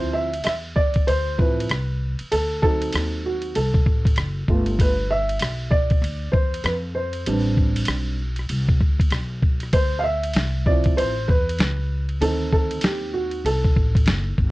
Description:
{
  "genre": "hip hop, jazz-hop",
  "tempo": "97 BPM",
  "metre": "4/4",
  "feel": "swing 62% on 16ths",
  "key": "unclear",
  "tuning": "A4 = 440 Hz",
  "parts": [
    { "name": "dark baby grand piano", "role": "accompaniment", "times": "0.0-14.3 s", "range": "Eb3 to F5", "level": "-24 LUFS", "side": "right 1 dB", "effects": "none" },
    { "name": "upright bass", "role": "bass", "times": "0.0-14.5 s", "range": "F#1 to F2", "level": "-26 LUFS", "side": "equal", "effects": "none" },
    { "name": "lo-fi sampler-style drum kit", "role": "drums", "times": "0.3-14.5 s", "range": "hi-hat, kick drum, ride cymbal, rim click, snare drum", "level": "-21 LUFS", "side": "equal", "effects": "none" }
  ],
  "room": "little or no reverb",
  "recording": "worn, warbling old tape, cassette tape, warbly pitch drift",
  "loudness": "-19 LUFS",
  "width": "side -19 dB against mid",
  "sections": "0.0-14.5 A section",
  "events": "grand piano solo 0.0-14.5",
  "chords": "0.0 Dm7; 2.3 D7b9; 4.5 G9; 7.3 Am11; 9.7 Dm7; 12.2 D7b9"
}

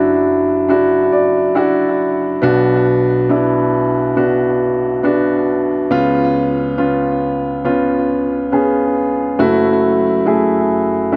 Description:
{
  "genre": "pop",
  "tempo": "69 BPM",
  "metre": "4/4",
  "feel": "straight",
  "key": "unclear",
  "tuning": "A4 = 440 Hz",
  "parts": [
    { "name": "dark baby grand piano", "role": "solo", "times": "0.0-11.2 s", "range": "F#1 to F#5", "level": "-15 LUFS", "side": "equal", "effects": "delay" }
  ],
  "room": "moderate plate reverb, RT60 3.7 s",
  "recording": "none",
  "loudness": "-15 LUFS",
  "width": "mono",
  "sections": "0.0-11.2 A section",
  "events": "grand piano fill 0.7-2.4",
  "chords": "0.0 Dadd9/F#; 2.4 Bm; 5.9 C#7; 9.4 F#m7"
}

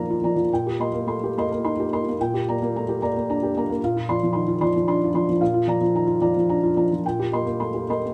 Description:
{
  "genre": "neoclassical minimalist piano",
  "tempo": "109 BPM",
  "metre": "3/4",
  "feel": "rubato",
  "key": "unclear",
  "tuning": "A4 = 439 Hz",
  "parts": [
    { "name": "felt-muted upright piano", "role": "solo", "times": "0.0-8.1 s", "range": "Bb2 to C6", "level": "-23 LUFS", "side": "equal", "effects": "none" }
  ],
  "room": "light reverb",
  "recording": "none",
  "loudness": "-23 LUFS",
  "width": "mono",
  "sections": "0.0-8.1 A section",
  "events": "none",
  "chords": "0.5 Cm7/Bb; 2.2 Gm/Bb; 3.8 Dm7/Bb; 5.4 Bb; 7.0 Cm7/Bb"
}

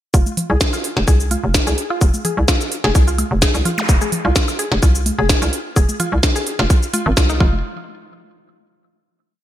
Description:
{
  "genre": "minimal techno",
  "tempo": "128 BPM",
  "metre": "4/4",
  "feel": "swing 54% on 16ths",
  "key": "F minor",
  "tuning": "A4 = 440 Hz",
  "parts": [
    { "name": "mallet-like synth pluck", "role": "riff", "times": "0.1-7.6 s", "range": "Eb4 to Ab4", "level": "-24 LUFS", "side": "left 1 dB", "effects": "chorus, sidechain pumping, ping-pong delay" },
    { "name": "hollow knocking FM bass", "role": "bass", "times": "0.1-7.6 s", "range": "F1 to C2", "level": "-18 LUFS", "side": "equal", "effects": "sidechain pumping" },
    { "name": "electronic kick drum", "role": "drums", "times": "0.1-7.5 s", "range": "none", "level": "-15 LUFS", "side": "equal", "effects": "overdrive" },
    { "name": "minimal click drum kit", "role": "drums", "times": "0.1-7.4 s", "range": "hi-hat, shaker, snare drum", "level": "-20 LUFS", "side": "equal", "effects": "overdrive, gated reverb" },
    { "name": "congas and woodblock", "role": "percussion", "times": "0.3-7.6 s", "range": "none", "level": "-26 LUFS", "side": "left 1 dB", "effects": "ping-pong delay" },
    { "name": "zap", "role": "sound effects", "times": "3.8-3.9 s", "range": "none", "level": "-25 LUFS", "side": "equal", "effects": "none" }
  ],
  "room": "light reverb",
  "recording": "bright 1980s-style digital production",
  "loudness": "-14 LUFS",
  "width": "side -12 dB against mid",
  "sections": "0.1-7.6 groove; 7.6-9.4 final hit",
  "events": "filter sweep on synth arpeggio sound 0.1-7.6",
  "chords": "0.1 F5; 7.4 N.C."
}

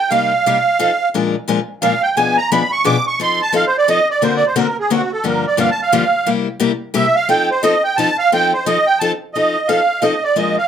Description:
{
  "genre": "jazz",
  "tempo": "176 BPM",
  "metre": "3/4",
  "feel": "swing 61% on 8ths",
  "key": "F mixolydian",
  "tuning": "A4 = 439 Hz",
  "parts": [
    { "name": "musette accordion", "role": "melody", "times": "0.0-10.7 s", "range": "F#4 to D6", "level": "-14 LUFS", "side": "right 3 dB", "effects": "none" },
    { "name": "picked steel-string acoustic guitar", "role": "accompaniment", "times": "0.1-10.6 s", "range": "G2 to B4", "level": "-18 LUFS", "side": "left 5 dB", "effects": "none" }
  ],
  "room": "moderate club reverb, RT60 0.7 s",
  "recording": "none",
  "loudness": "-13 LUFS",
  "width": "side -8 dB against mid",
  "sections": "0.0-9.3 A section; 9.3-10.7 B section",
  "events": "accordion solo 0.0-9.3",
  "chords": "0.1 Cm7; 0.8 F7; 1.1 Bb7; 2.2 Bdim7; 3.2 F7; 4.2 Daug7; 5.2 Gm7; 6.3 C7; 7.3 F7"
}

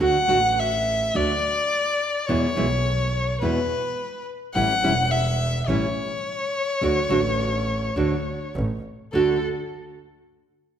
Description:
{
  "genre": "tango",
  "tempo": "105 BPM",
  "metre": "4/4",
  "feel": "rubato",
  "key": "D major",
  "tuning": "A4 = 440 Hz",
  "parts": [
    { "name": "warm violin", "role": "second line", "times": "0.0-9.4 s", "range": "A4 to F#5", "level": "-24 LUFS", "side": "left 2 dB", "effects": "none" },
    { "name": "nylon-string guitar", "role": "accompaniment", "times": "0.0-9.4 s", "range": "B2 to F#4", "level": "-24 LUFS", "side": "right 3 dB", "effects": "none" },
    { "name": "clear double bass", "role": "bass", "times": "0.0-9.4 s", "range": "E1 to E2", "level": "-27 LUFS", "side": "right 1 dB", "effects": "none" }
  ],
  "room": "wet scoring stage reverb, RT60 1.4 s",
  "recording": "none",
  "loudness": "-21 LUFS",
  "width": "side -9 dB against mid",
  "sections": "0.0-9.1 A section; 9.1-10.8 B section",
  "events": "violin solo 0.0-9.1",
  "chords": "0.0 D; 2.3 E; 4.6 A7; 6.8 D; 8.6 N.C.; 9.1 D"
}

